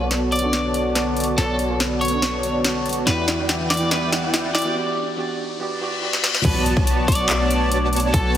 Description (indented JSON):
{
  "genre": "future bass",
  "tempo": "142 BPM",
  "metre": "4/4",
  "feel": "half-time",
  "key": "B minor",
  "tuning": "A4 = 440 Hz",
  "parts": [
    { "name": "soft round pluck", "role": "accompaniment", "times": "0.0-6.4 s", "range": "E3 to C#6", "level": "-28 LUFS", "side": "right 2 dB", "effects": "lush chorus, cassette tape, sidechain pumping, tape echo" },
    { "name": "airy breathy pad", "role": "sustained chords", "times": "0.0-8.4 s", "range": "B2 to A4", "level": "-32 LUFS", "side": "equal", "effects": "chorus, sidechain pumping" },
    { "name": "soft supersaw", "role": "riff", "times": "0.0-8.4 s", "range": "E3 to C#6", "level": "-24 LUFS", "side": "equal", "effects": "sidechain pumping, low-pass filter" },
    { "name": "warm 808-style bass", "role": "bass", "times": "0.0-8.4 s", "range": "B1 to E2", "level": "-26 LUFS", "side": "equal", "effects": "sidechain pumping" },
    { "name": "riser, reverse cymbal and impact", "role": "sound effects", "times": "2.8-8.1 s", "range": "none", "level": "-30 LUFS", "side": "left 3 dB", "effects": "none" },
    { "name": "trap drum kit", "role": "drums", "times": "0.1-8.4 s", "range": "crash cymbal, handclaps, hi-hat, snare drum", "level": "-24 LUFS", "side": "left 1 dB", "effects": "overdrive, high-pass filter on hats, high-pass filter on snare, high-pass filter on cymbals" },
    { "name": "electric guitar at the edge of break-up", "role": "melody", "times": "0.3-8.3 s", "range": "A4 to D5", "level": "-26 LUFS", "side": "equal", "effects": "sidechain pumping, tape echo" },
    { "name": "airy dreamy lead", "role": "arpeggios", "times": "6.4-8.4 s", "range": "A5 to C#6", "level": "-28 LUFS", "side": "equal", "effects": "chorus, sidechain pumping" },
    { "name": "electronic kick drum", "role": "drums", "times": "6.4-8.2 s", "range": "none", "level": "-20 LUFS", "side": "equal", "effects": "overdrive" }
  ],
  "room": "moderate lush hall reverb, RT60 1.9 s",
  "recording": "heavily compressed radio sound, multiband compression, high-pass filter",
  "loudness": "-18 LUFS",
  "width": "side -10 dB against mid",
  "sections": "0.0-6.4 A section; 6.4-8.4 B section",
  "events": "build-up 0.0-6.4; drum fill 0.0-4.8, 6.1-6.4; filter sweep on supersaw synth 0.0-6.4; filter sweep 0.0-6.4; riser 2.8-6.4; break 4.8-6.4; reverse cymbal 5.6-6.4; drop 6.4-8.4; impact 6.4-8.1",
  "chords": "0.0 Bm7; 3.1 Em7; 6.2 Bm; 6.4 Bm7"
}